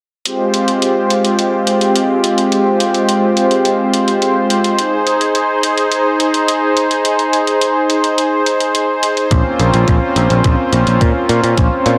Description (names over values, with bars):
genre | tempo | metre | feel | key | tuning
synthwave | 106 BPM | 4/4 | straight | F minor | A4 = 441 Hz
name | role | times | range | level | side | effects
warm analog pad | sustained chords | 0.3-12.0 s | Ab3 to C5 | -15 LUFS | equal | chorus, tremolo, sidechain pumping
electronic hi-hat | drums | 0.3-12.0 s | none | -24 LUFS | equal | none
picked electric bass | bass | 9.3-12.0 s | Bb1 to Bb2 | -16 LUFS | equal | none
electronic kick drum | drums | 9.3-11.7 s | none | -18 LUFS | equal | none
room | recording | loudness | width
moderate plate reverb, RT60 1.3 s, digital ambience | dreamy mix soaked in reverb | -14 LUFS | mono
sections
0.3-12.0 A section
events
none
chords
0.3 Fmadd9; 4.8 Ab; 9.3 Bbmadd9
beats
| 0.26 0.82 1.39 1.96 | 2.52 3.09 3.65 4.22 | 4.79 5.35 5.92 6.48 | 7.05 7.62 8.18 8.75 | 9.31 9.88 10.45 11.01 | 11.58